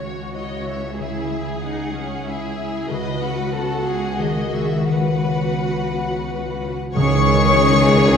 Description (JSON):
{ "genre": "cinematic, emotional film score for orchestra", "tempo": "85-96 BPM", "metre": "3/4", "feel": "rubato", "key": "C# minor", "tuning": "A4 = 439 Hz", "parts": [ { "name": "warm symphonic violin section", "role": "melody", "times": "0.0-8.2 s", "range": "C#5 to C#6", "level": "-25 LUFS", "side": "left 5 dB", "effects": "none" }, { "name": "warm symphonic violin section", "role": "second line", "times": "0.0-8.2 s", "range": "F#4 to C#5", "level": "-27 LUFS", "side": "left 2 dB", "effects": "none" }, { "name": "warm studio viola section", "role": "accompaniment", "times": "0.0-8.2 s", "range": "D#3 to G#4", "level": "-27 LUFS", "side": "right 1 dB", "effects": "none" }, { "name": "concert harp", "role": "arpeggios", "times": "0.0-8.2 s", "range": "C#3 to G#4", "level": "-25 LUFS", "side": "left 2 dB", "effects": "none" }, { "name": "warm studio cello section", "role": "bass", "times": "0.0-8.2 s", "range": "C#2", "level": "-25 LUFS", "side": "right 2 dB", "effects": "none" }, { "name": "flute section", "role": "second line", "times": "7.0-8.2 s", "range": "C#5", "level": "-23 LUFS", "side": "left 3 dB", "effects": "none" }, { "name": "mellow clarinet", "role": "second line", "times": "7.0-8.2 s", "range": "G#4", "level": "-26 LUFS", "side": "equal", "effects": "none" }, { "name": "warm oboe", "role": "second line", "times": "7.0-8.2 s", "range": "D#5", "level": "-27 LUFS", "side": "right 1 dB", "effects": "none" }, { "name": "mellow French horn section", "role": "sustained chords", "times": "7.0-8.2 s", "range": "C#3 to C#4", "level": "-22 LUFS", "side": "left 1 dB", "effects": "none" }, { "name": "warm symphonic double bass section", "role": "bass", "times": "7.0-8.2 s", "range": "C#2", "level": "-22 LUFS", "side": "right 1 dB", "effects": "none" }, { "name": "timpani", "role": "percussion", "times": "7.0-7.9 s", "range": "C#3", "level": "-22 LUFS", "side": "right 5 dB", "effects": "none" } ], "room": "wet scoring stage reverb, RT60 1.9 s", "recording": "heard from further back in the room", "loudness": "-18 LUFS", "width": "side -7 dB against mid", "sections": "0.0-7.0 A section; 7.0-8.2 B section", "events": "none", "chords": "0.0 C#m; 2.9 B/C#; 7.0 C#madd9" }